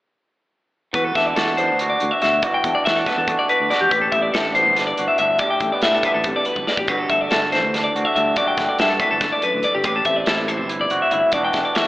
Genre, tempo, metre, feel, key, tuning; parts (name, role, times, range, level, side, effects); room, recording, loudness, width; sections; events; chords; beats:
math rock and midwest emo; 283 BPM (eighths); 7/8; straight; E minor; A4 = 440 Hz
electric guitar through a small old amp; accompaniment; 0.9-11.9 s; F#2 to G4; -23 LUFS; right 2 dB; slapback echo
clean electric guitar; arpeggios; 0.9-11.9 s; G4 to G5; -18 LUFS; left 1 dB; slapback echo
fingered electric bass; bass; 0.9-11.9 s; E1 to E3; -31 LUFS; equal
modern studio drum kit; drums; 0.9-11.9 s; hi-hat, kick drum, snare drum; -25 LUFS; equal
wet lush hall reverb, RT60 1.9 s, small room ambience; big arena sound, AM radio sound; -16 LUFS; side -17 dB against mid
0.9-11.9 A section
drum fill 6.6-6.9
0.9 E9sus4; 3.9 Em11/G; 11.3 Em9
| 0.94 1.15 1.36 1.58 1.79 2.00 2.21 | 2.42 2.64 2.85 3.06 3.27 3.48 3.70 | 3.91 4.12 4.33 4.54 4.76 4.97 5.18 | 5.39 5.61 5.82 6.03 6.24 6.46 6.67 | 6.88 7.09 7.30 7.52 7.73 7.94 8.15 | 8.37 8.58 8.79 9.00 9.21 9.43 9.64 | 9.85 10.06 10.28 10.49 10.70 10.91 11.12 | 11.34 11.55 11.76